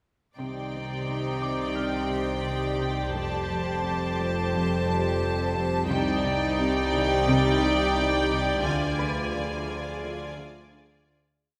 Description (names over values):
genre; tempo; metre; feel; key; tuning
cinematic, suspense film score; 87 BPM; 4/4; straight; C harmonic minor; A4 = 440 Hz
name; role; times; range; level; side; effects
clear studio violin section; melody; 0.4-11.2 s; G5 to A5; -35 LUFS; equal; none
rich studio violin section; second line; 0.4-11.2 s; C5 to D5; -37 LUFS; equal; none
rich studio viola section; accompaniment; 0.4-11.2 s; Eb4 to G4; -35 LUFS; equal; none
granular cloud pad; sustained chords; 1.6-11.4 s; G4 to A5; -39 LUFS; equal; built-in reverb
mellow French horn section; sustained chords; 0.4-11.1 s; C4 to D5; -37 LUFS; equal; none
warm trombone section; sustained chords; 0.4-11.1 s; D3 to G3; -38 LUFS; equal; none
warm studio cello section; riff; 0.4-11.3 s; F2 to D3; -35 LUFS; equal; none
dark studio double bass section; bass; 0.4-11.2 s; F1 to D2; -37 LUFS; equal; none
warm studio cello section; bass; 0.4-11.2 s; C2 to C3; -35 LUFS; equal; none
deep rumbling drone; drone; 1.0-11.4 s; C2 to F2; -40 LUFS; equal; built-in reverb
dark studio violin section; texture; 0.4-11.0 s; C6 to G6; -41 LUFS; equal; none
concert harp; texture; 1.4-11.4 s; B4 to F6; -40 LUFS; equal; none
room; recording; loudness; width
wet scoring stage reverb, RT60 1.5 s; none; -26 LUFS; mono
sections
0.4-11.4 A section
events
fade-out 8.7-11.4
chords
0.4 Cmadd9; 3.1 Fadd9; 5.9 Cmadd9; 8.7 Ddim